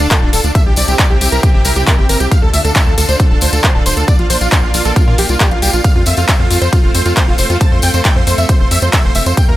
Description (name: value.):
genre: uplifting trance.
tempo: 136 BPM.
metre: 4/4.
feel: straight.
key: unclear.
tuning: A4 = 442 Hz.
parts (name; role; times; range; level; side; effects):
big supersaw lead; melody; 0.0-9.6 s; D4 to A5; -18 LUFS; right 1 dB; cassette tape, sidechain pumping.
lush unison pad; sustained chords; 0.0-9.6 s; C3 to Bb4; -21 LUFS; right 1 dB; chorus, sidechain pumping.
tight sequencer bass; bass; 0.0-9.6 s; D1 to Bb2; -15 LUFS; equal; sidechain pumping.
punchy analog drum machine; drums; 0.0-9.5 s; handclaps, hi-hat, ride cymbal; -18 LUFS; left 1 dB; none.
tambourine; percussion; 0.0-9.5 s; none; -22 LUFS; left 2 dB; none.
sub drop; sound effects; 0.1-0.6 s; none; -35 LUFS; equal; none.
electronic kick drum; drums; 0.1-9.5 s; none; -12 LUFS; equal; none.
room: digital ambience.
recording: none.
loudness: -9 LUFS.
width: side -15 dB against mid.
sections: 0.0-9.6 A section.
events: impact 0.0-0.6.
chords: 0.0 Dm; 0.6 C; 2.3 Dm; 4.1 Bb; 5.8 F.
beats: 0.11 | 0.55 0.99 1.43 1.87 | 2.31 2.76 3.20 3.64 | 4.08 4.52 4.96 5.40 | 5.84 6.29 6.73 7.17 | 7.61 8.05 8.49 8.93 | 9.37.